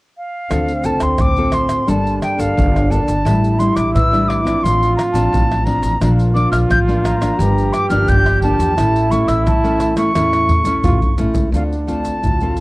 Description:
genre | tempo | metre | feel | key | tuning
samba and choro | 87 BPM | 4/4 | straight | unclear | A4 = 440 Hz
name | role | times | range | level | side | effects
silver concert flute | melody | 0.2-12.6 s | F5 to G6 | -19 LUFS | equal | cassette tape
warm trombone | second line | 0.5-12.6 s | C4 to G4 | -21 LUFS | right 2 dB | cassette tape
nylon-string guitar | accompaniment | 0.5-12.6 s | G2 to A4 | -21 LUFS | left 2 dB | cassette tape
upright bass | bass | 0.5-12.6 s | G1 to A2 | -19 LUFS | equal | none
tube shaker, surdo, pandeiro and tamborim | percussion | 0.5-12.6 s | none | -20 LUFS | equal | none
room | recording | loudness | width
light reverb, small room ambience | home recording on cassette | -13 LUFS | side -21 dB against mid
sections
0.5-11.5 A section; 11.5-12.6 B section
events
drum fill 10.2-11.5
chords
0.0 N.C.; 0.5 Dm7; 1.9 Gmadd9; 3.3 A7sus4; 4.6 Dm7/A; 6.0 Bb; 7.4 Gm7; 8.8 A; 11.5 Dm7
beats
| 0.51 1.20 1.89 2.58 | 3.27 3.95 4.64 5.33 | 6.02 6.71 7.40 8.09 | 8.78 9.47 10.16 10.85 | 11.54 12.23

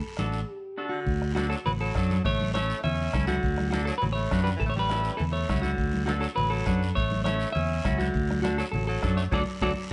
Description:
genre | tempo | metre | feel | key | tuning
latin, cumbia | 204 BPM | 4/4 | straight | D major | A4 = 436 Hz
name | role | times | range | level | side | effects
clean electric guitar | melody | 0.0-9.7 s | F#4 to E5 | -33 LUFS | equal | spring reverb
clean electric guitar | accompaniment | 0.2-9.7 s | C#4 to B4 | -38 LUFS | equal | none
fingered electric bass | bass | 0.2-9.7 s | A1 to F#2 | -31 LUFS | equal | none
bombo | percussion | 0.2-9.7 s | none | -35 LUFS | equal | none
congas | percussion | 0.2-9.7 s | none | -36 LUFS | equal | none
guiro | percussion | 0.2-9.7 s | none | -46 LUFS | equal | none
raspy tenor saxophone | second line | 0.9-9.7 s | D3 to C#4 | -37 LUFS | equal | none
room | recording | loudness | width
light reverb | nothing above 10.9 kHz | -27 LUFS | mono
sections
0.0-1.1 A section; 1.1-9.9 B section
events
break 0.5-1.1; band accent 9.3-9.9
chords
0.0 D; 2.3 A; 3.4 D; 4.6 A7; 5.8 D; 7.0 A; 8.1 D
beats
0.19 0.48 0.78 | 1.07 1.37 1.66 1.96 | 2.25 2.55 2.84 3.14 | 3.44 3.73 4.03 4.32 | 4.62 4.91 5.20 5.50 | 5.79 6.09 6.38 6.68 | 6.97 7.26 7.56 7.85 | 8.15 8.44 8.73 9.03 | 9.32 9.62

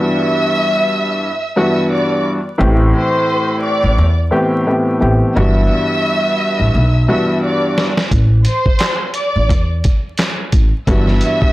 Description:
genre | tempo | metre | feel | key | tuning
hip hop, boom-bap hip-hop | 87 BPM | 4/4 | swing 57% on 16ths | A dorian | A4 = 436 Hz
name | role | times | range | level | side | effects
warm studio violin section | melody | 0.0-11.5 s | C5 to E6 | -18 LUFS | equal | high-pass filter, low-pass filter, analog delay
dark upright piano | accompaniment | 0.0-11.5 s | G2 to G4 | -16 LUFS | left 1 dB | high-pass filter, low-pass filter
upright bass | bass | 2.6-11.2 s | G1 to E2 | -14 LUFS | equal | tube saturation
dusty soul sampler-style drum kit | drums | 7.8-11.5 s | handclaps, hi-hat, kick drum, snare drum | -16 LUFS | equal | none
room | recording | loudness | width
light reverb | dry, gritty hardware recording, transformer saturation, vinyl crackle | -12 LUFS | side -18 dB against mid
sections
0.0-11.5 A section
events
break 0.0-2.6; drum fill 7.4-8.1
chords
0.0 Em7/G; 2.6 Am7; 5.4 Em7/G; 8.1 Am; 10.9 Em7/G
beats
0.53 1.22 1.91 | 2.60 3.29 3.98 4.67 | 5.36 6.05 6.74 7.42 | 8.12 8.80 9.49 10.18 | 10.87

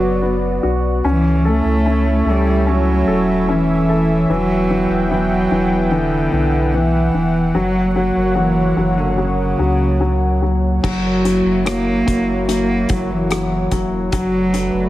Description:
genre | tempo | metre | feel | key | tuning
pop ballad | 74 BPM | 4/4 | straight | unclear | A4 = 440 Hz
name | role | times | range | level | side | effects
dark cello | melody | 0.0-14.9 s | C#3 to A#3 | -18 LUFS | right 1 dB | none
clear baby grand piano | accompaniment | 0.0-14.9 s | E3 to A4 | -20 LUFS | left 3 dB | none
warm analog pad | sustained chords | 0.0-14.9 s | A3 to G5 | -23 LUFS | right 1 dB | chorus
warm sub bass | bass | 0.0-14.9 s | E1 to C#2 | -21 LUFS | equal | none
loose indie drum kit | drums | 10.8-14.7 s | crash cymbal, hi-hat, kick drum, rim click | -24 LUFS | equal | none
room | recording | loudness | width
moderate concert hall reverb, RT60 2.2 s | none | -14 LUFS | side -15 dB against mid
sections
0.0-10.8 A section; 10.8-14.9 B section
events
none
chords
0.0 Bm; 1.0 A/C#; 4.3 Emadd9; 7.5 F#; 10.8 F#7; 14.1 Bm7/F#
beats
0.22 | 1.04 1.86 2.67 3.49 | 4.30 5.11 5.92 6.74 | 7.55 8.36 9.18 10.01 | 10.84 11.66 12.49 13.31 | 14.13

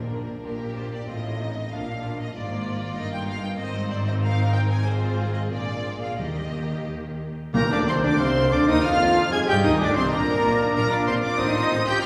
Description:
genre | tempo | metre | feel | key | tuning
quick classical-period movement for symphony orchestra | 94 BPM | 2/4 | rubato | Eb major | A4 = 441 Hz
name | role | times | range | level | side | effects
rich studio violin section | melody | 0.0-12.1 s | Bb4 to Ab6 | -33 LUFS | equal | none
rich studio violin section | second line | 0.0-12.1 s | D4 to Ab5 | -37 LUFS | equal | none
clear studio cello section | bass | 0.0-12.1 s | G2 to Ab4 | -32 LUFS | equal | none
rich studio double bass section | bass | 0.0-12.1 s | G1 to Ab2 | -30 LUFS | equal | none
timpani | percussion | 0.0-0.7, 6.2-8.5 s | Bb2 to Eb3 | -35 LUFS | equal | none
rich studio viola section | accompaniment | 0.1-12.1 s | Bb3 to Ab4 | -35 LUFS | equal | none
mellow clarinet | second line | 7.5-12.1 s | Bb3 to Ab4 | -34 LUFS | equal | none
silver concert flute | second line | 7.5-12.1 s | Bb4 to Ab5 | -32 LUFS | equal | none
warm bassoon | accompaniment | 7.5-12.1 s | Bb2 to D4 | -32 LUFS | equal | none
mellow French horn section | sustained chords | 7.5-12.1 s | Bb3 to Ab4 | -32 LUFS | equal | none
mellow trumpet | stabs | 7.5-12.1 s | Bb4 to Ab5 | -29 LUFS | equal | none
mellow cor anglais | second line | 7.6-12.1 s | C5 to G5 | -33 LUFS | equal | none
room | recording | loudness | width
wet church reverb, RT60 3.1 s | recorded in a church or concert hall, studio reverb | -24 LUFS | mono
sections
0.0-7.5 A section; 7.5-12.1 A section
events
none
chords
0.0 Bb; 1.1 F7/A; 1.7 Bb; 2.3 Bb7/Ab; 3.0 Eb/G; 3.6 Ab; 4.9 Fm/Ab; 5.5 Bb7; 6.2 Eb; 8.8 Fm; 9.5 Eb; 10.1 Bb; 11.4 F7/A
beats
0.45 | 1.08 1.71 | 2.34 2.97 | 3.59 4.22 | 4.86 5.52 | 6.20 6.88 | 7.55 8.19 | 8.83 9.48 | 10.12 10.75 | 11.39 12.03

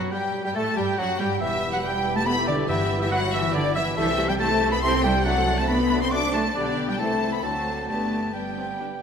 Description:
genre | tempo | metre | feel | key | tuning
quick classical-period movement for symphony orchestra | 139 BPM | 3/4 | straight | G major | A4 = 440 Hz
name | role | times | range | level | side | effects
clear clarinet | second line | 0.0-9.0 s | B3 to A4 | -34 LUFS | left 2 dB | none
clear oboe | second line | 0.0-9.0 s | D5 to D6 | -30 LUFS | right 2 dB | none
warm studio violin section | second line | 0.0-9.0 s | F#4 to D5 | -34 LUFS | left 2 dB | none
dark studio viola section | accompaniment | 0.0-8.9 s | F#3 to E4 | -32 LUFS | equal | none
mellow French horn section | sustained chords | 0.0-9.0 s | D3 to D4 | -30 LUFS | left 4 dB | none
rich studio double bass section | bass | 0.0-9.0 s | E1 to A2 | -32 LUFS | right 3 dB | none
warm studio cello section | bass | 0.0-9.0 s | D3 to D4 | -30 LUFS | right 2 dB | none
clear studio violin section | melody | 0.1-9.0 s | D5 to D6 | -30 LUFS | left 5 dB | none
mellow concert flute | second line | 0.1-9.0 s | D5 to D6 | -31 LUFS | equal | none
mellow bassoon | accompaniment | 0.1-9.0 s | E3 to B3 | -33 LUFS | right 2 dB | none
timpani | percussion | 2.7-3.3 s | G2 | -32 LUFS | left 1 dB | none
room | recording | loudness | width
moderate concert hall reverb, RT60 1.9 s | minimal, uncompressed stereo recording | -21 LUFS | side -7 dB against mid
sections
0.0-9.0 A section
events
none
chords
0.1 Gsus2; 1.4 Em; 2.7 Em/G; 4.0 Am7/C; 5.3 D7/C; 6.6 G/B; 7.0 Am/C; 7.4 D7; 7.9 G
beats
| 0.12 0.55 0.98 | 1.41 1.84 2.27 | 2.70 3.12 3.55 | 3.98 4.40 4.83 | 5.26 5.69 6.13 | 6.56 7.00 7.44 | 7.89 8.35 8.80

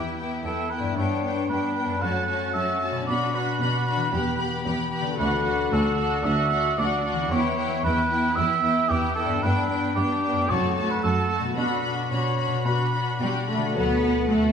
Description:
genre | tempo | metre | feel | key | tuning
cinematic, heroic adventure film score | 113 BPM | 4/4 | straight | B minor | A4 = 435 Hz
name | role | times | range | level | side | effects
rich symphonic violin section | melody | 0.0-14.5 s | F#5 to B5 | -32 LUFS | left 4 dB | none
mellow cor anglais | second line | 0.0-13.2 s | F#4 to F#5 | -26 LUFS | right 3 dB | none
rich symphonic violin section | second line | 0.0-14.5 s | D4 to B4 | -31 LUFS | left 2 dB | none
rich symphonic viola section | accompaniment | 0.0-14.5 s | A3 to F#4 | -31 LUFS | equal | none
concert harp | arpeggios | 0.0-14.5 s | F#2 to B4 | -30 LUFS | left 6 dB | none
rich symphonic cello section | bass | 0.0-14.5 s | D2 to B3 | -28 LUFS | right 2 dB | none
timpani | percussion | 10.5-11.3 s | F#2 | -36 LUFS | equal | none
dark French horn section | sustained chords | 13.7-13.9 s | F#4 to A4 | -34 LUFS | left 2 dB | none
dark trombone section | sustained chords | 13.7-13.9 s | F#3 | -33 LUFS | right 3 dB | none
warm symphonic double bass section | bass | 13.8-14.5 s | D2 | -29 LUFS | right 2 dB | none
room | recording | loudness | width
wet recital hall reverb, RT60 1.6 s | recorded in a church or concert hall | -22 LUFS | side -7 dB against mid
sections
0.0-13.8 A section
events
none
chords
0.0 Em; 1.0 G; 2.0 F#m; 3.1 Bm; 4.1 Em; 5.2 D; 7.3 Em; 9.4 G; 10.5 F#m; 11.6 Bm; 13.8 D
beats
0.44 | 0.97 1.50 2.02 2.55 | 3.08 3.61 4.14 4.66 | 5.19 5.72 6.25 6.78 | 7.31 7.84 8.37 8.90 | 9.43 9.97 10.50 11.04 | 11.57 12.12 12.66 13.21 | 13.75 14.29

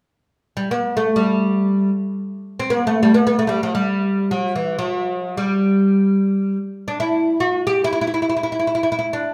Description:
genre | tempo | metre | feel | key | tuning
arabic | free time | none | none | G maqam rast | A4 = 439 Hz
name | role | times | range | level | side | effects
oud | melody | 0.6-9.3 s | E3 to G4 | -19 LUFS | equal | none
room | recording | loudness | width
moderate concert hall reverb, RT60 1.8 s | none | -19 LUFS | mono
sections
0.3-9.3 A section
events
none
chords
none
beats
free time

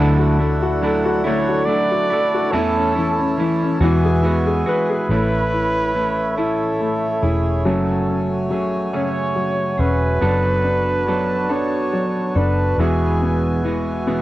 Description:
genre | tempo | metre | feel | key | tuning
pop | 47 BPM (dotted quarters) | 6/8 | straight | A major | A4 = 440 Hz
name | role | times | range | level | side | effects
clear baby grand piano | accompaniment | 0.0-14.2 s | D3 to B4 | -22 LUFS | left 3 dB | cassette tape
hand-pumped harmonium | sustained chords | 0.0-14.2 s | A3 to A5 | -24 LUFS | right 1 dB | cassette tape
clean electric guitar | arpeggios | 0.0-14.2 s | E2 to A4 | -23 LUFS | right 3 dB | cassette tape, tape echo
vintage muted fingered electric bass | bass | 0.0-14.2 s | E1 to E2 | -21 LUFS | equal | none
clear flugelhorn | melody | 1.3-13.8 s | G#4 to D5 | -22 LUFS | right 1 dB | cassette tape
room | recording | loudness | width
moderate studio reverb, RT60 0.6 s | home recording on cassette | -16 LUFS | side -16 dB against mid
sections
0.0-5.1 A section; 5.1-14.2 B section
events
none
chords
0.0 Dadd9; 2.5 A/E; 3.8 Eadd9; 5.1 A; 7.7 F#madd9; 10.2 Bm7/F#; 12.8 Eadd9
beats
1.25 | 2.53 3.81 | 5.09 6.38 | 7.66 8.94 | 10.22 11.51 | 12.79 14.07

